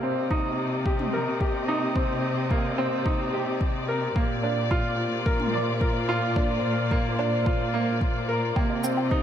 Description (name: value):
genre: piano and strings electronica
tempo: 109 BPM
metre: 4/4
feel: straight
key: C minor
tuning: A4 = 439 Hz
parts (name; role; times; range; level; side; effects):
- muted studio string section; sustained chords; 0.0-9.2 s; Bb3 to Eb5; -32 LUFS; left 2 dB; none
- clear upright piano; riff; 0.0-9.2 s; Bb3 to D5; -27 LUFS; right 1 dB; low-pass filter, ping-pong delay
- muted chamber cello section; bass; 0.0-9.2 s; Bb2 to C3; -30 LUFS; left 2 dB; sidechain pumping
- electronic kick drum; drums; 0.3-9.2 s; none; -26 LUFS; equal; none
- electronic toms and shaker; drums; 1.0-1.1, 5.4-5.5, 8.8-8.9 s; none; -32 LUFS; right 1 dB; none
- warbly dusty pluck; arpeggios; 8.6-9.2 s; C5 to G5; -33 LUFS; right 1 dB; chorus, vintage 12-bit sampler grit, sidechain pumping, ping-pong delay
room: light reverb, studio reverb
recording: none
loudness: -23 LUFS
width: side -9 dB against mid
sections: 0.0-9.2 A section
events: none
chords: 0.0 Cm7; 4.2 Bb; 8.6 Cm7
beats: 0.31 0.86 1.41 | 1.96 2.51 3.06 3.61 | 4.16 4.71 5.26 5.81 | 6.36 6.91 7.46 8.01 | 8.56 9.11